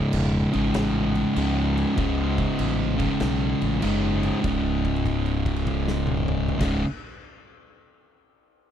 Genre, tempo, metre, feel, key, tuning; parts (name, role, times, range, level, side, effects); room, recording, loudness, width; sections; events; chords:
stoner and doom metal; 98 BPM; 4/4; swing 66% on 8ths; A4 = 440 Hz
fuzz guitar; riff; 0.0-6.8 s; C#2 to C#3; -23 LUFS; equal; distortion
growling fingered electric bass; bass; 0.1-6.8 s; C#1 to C#2; -27 LUFS; equal; overdrive
oversized low-tuned drum kit; drums; 0.1-6.7 s; crash cymbal, kick drum, snare drum, toms; -31 LUFS; equal
small room ambience; dry, close 1970s-style studio recording; -21 LUFS; side -9 dB against mid
0.0-4.4 A section; 4.4-6.9 B section
held note 4.4-6.5
0.0 C#5